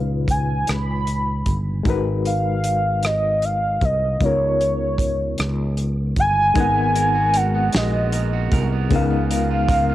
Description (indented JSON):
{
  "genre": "slow six-eight R&B",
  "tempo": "51 BPM (dotted quarters)",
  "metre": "6/8",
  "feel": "straight",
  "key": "G# dorian",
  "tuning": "A4 = 441 Hz",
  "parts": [
    { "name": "barky reed electric piano", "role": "accompaniment", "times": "0.0-9.9 s", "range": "A#2 to F#5", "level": "-26 LUFS", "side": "left 6 dB", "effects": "overdrive, tremolo, cassette tape" },
    { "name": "fretless electric bass", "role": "bass", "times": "0.0-9.9 s", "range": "G1 to C#2", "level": "-22 LUFS", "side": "right 1 dB", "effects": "none" },
    { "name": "warm velvety synth lead", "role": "melody", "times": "0.3-9.9 s", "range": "C#5 to B5", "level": "-21 LUFS", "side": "equal", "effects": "chorus, cassette tape" },
    { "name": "warm soul drum kit", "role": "drums", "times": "0.3-9.9 s", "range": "hi-hat, kick drum, rim click, snare drum", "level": "-23 LUFS", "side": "equal", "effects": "cassette tape" },
    { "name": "hollow soft pad", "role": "sustained chords", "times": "6.5-9.9 s", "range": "C#3 to A#4", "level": "-31 LUFS", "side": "right 2 dB", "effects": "ensemble chorus, cassette tape" },
    { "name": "electric guitar at the edge of break-up", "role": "second line", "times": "6.6-9.9 s", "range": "C#3 to A#4", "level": "-30 LUFS", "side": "right 10 dB", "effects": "cassette tape" }
  ],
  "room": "light reverb",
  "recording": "home recording on cassette",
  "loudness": "-18 LUFS",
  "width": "side -14 dB against mid",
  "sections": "0.0-6.6 A section; 6.6-9.9 B section",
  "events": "none",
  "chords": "0.0 C#13; 1.9 G#m9; 4.2 C#13; 6.6 G#m9; 8.9 C#13",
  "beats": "0.67 | 1.85 3.03 | 4.20 5.38 | 6.56 7.73 | 8.91"
}